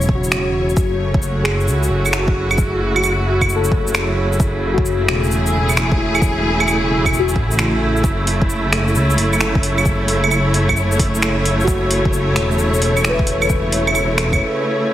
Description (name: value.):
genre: future garage.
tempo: 132 BPM.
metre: 4/4.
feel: swing 67% on 16ths.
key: F# minor.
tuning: A4 = 440 Hz.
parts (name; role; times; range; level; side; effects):
muted felt-like synth keys; accompaniment; 0.0-8.1, 11.6-14.9 s; E4 to E5; -23 LUFS; left 2 dB; chorus, phaser, sidechain pumping, ping-pong delay.
clear studio string section; sustained chords; 0.0-14.9 s; C#3 to C#5; -19 LUFS; equal; sidechain pumping.
dark detuned saw bass; bass; 0.0-14.4 s; E1 to C#2; -20 LUFS; equal; tube saturation, sidechain pumping.
deep house drum kit; drums; 0.0-14.4 s; claves, finger snaps, hi-hat, shaker; -20 LUFS; right 1 dB; overdrive.
electronic kick drum; drums; 0.1-14.4 s; none; -19 LUFS; equal; overdrive.
room: light reverb.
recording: heavily compressed radio sound, vinyl crackle.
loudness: -14 LUFS.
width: side -12 dB against mid.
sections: 0.0-14.9 A section.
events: break 14.4-14.9.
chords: 0.0 C#madd11/E; 0.8 F#m7; 8.0 A/F#.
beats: 0.31 | 0.77 1.22 1.68 2.13 | 2.59 3.04 3.50 3.95 | 4.40 4.86 5.31 5.77 | 6.22 6.68 7.13 7.59 | 8.04 8.49 8.95 9.40 | 9.86 10.31 10.77 11.22 | 11.68 12.13 12.59 13.04 | 13.49 13.95 14.40 14.86.